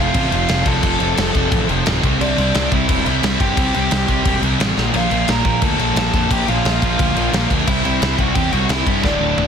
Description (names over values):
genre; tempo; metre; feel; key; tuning
punk rock; 176 BPM; 4/4; straight; unclear; A4 = 439 Hz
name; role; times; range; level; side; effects
biting overdriven guitar; melody; 0.0-9.5 s; D4 to Bb5; -22 LUFS; right 1 dB; digital delay
raw garage guitar; riff; 0.0-9.5 s; D2 to C4; -25 LUFS; left 12 dB; overdrive
sludgy distorted guitar; riff; 0.0-9.5 s; D2 to C4; -23 LUFS; right 12 dB; overdrive
tight distorted guitar; riff; 0.0-9.5 s; D2 to C4; -24 LUFS; equal; distortion
fuzz picked electric bass; bass; 0.0-9.5 s; D1 to G2; -22 LUFS; equal; overdrive
big rock drum kit; drums; 0.1-9.5 s; crash cymbal, kick drum, snare drum, toms; -20 LUFS; left 1 dB; soft clipping on snare
room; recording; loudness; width
little or no reverb; dense, heavily limited modern master; -14 LUFS; side -7 dB against mid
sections
0.0-9.5 A section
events
drum fill 4.8, 9.0-9.5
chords
0.0 F; 2.0 C; 4.8 Bb; 7.7 C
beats
0.15 0.49 | 0.84 1.18 1.52 1.86 | 2.21 2.55 2.89 3.23 | 3.58 3.92 4.26 4.60 | 4.94 5.28 5.62 5.97 | 6.31 6.65 6.99 7.33 | 7.67 8.02 8.36 8.70 | 9.04 9.38